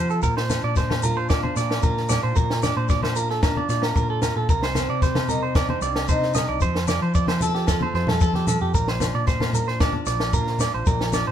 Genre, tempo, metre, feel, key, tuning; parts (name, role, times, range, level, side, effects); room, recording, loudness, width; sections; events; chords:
highlife guitar band; 113 BPM; 4/4; straight; Bb major; A4 = 435 Hz
picked acoustic archtop guitar; accompaniment; 0.0-11.3 s; G2 to A4; -31 LUFS; left 2 dB
clean electric guitar; arpeggios; 0.0-11.3 s; G4 to Eb5; -26 LUFS; right 6 dB
mellow fretless electric bass; bass; 0.0-11.3 s; Bb1 to F3; -26 LUFS; equal
shekere; percussion; 0.1-11.3 s; -31 LUFS; left 4 dB
compact cocktail drum kit; drums; 0.2-11.3 s; kick drum, snare drum; -24 LUFS; equal
agogo bells; percussion; 0.5-11.3 s; -35 LUFS; left 10 dB
congas; percussion; 0.5-11.3 s; -29 LUFS; equal
moderate studio reverb, RT60 0.7 s; band playing live in one room; -20 LUFS; side -10 dB against mid
0.2-11.3 A section
0.2 Bb; 4.5 Cm; 6.6 F; 8.7 Bb